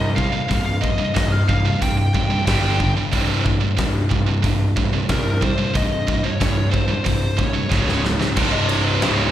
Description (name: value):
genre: heavy metal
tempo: 92 BPM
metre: 4/4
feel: straight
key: C phrygian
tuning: A4 = 440 Hz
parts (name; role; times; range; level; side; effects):
- high-gain lead guitar; melody; 0.0-9.3 s; Bb4 to G5; -26 LUFS; left 2 dB; distortion, slapback echo, ping-pong delay
- heavy high-gain guitar; riff; 0.0-9.3 s; C2 to G3; -23 LUFS; right 6 dB; distortion, slapback echo
- sludgy distorted guitar; riff; 0.0-9.3 s; C2 to G3; -25 LUFS; left 4 dB; overdrive
- fuzz picked electric bass; bass; 0.0-9.3 s; C1 to C2; -23 LUFS; equal; overdrive
- big rock drum kit; drums; 0.2-9.2 s; crash cymbal, hi-hat, kick drum, ride cymbal, snare drum; -23 LUFS; equal; none
- chamber organ, cornet; sustained chords; 8.4-9.3 s; none; barely audible; none; none
- heavy high-gain guitar; riff; 8.4-9.3 s; C2 to Db3; -26 LUFS; left 1 dB; distortion, slapback echo
room: little or no reverb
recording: live gig heard through the venue's PA, recital hall reverb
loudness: -17 LUFS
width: side -12 dB against mid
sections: 0.0-8.4 A section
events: drum fill 7.7-8.4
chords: 0.0 Cm; 2.5 G5; 3.1 C5; 7.7 Db5; 8.4 Cm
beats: | 0.50 1.15 1.81 2.47 | 3.12 3.78 4.43 5.09 | 5.75 6.40 7.06 7.71 | 8.37 9.02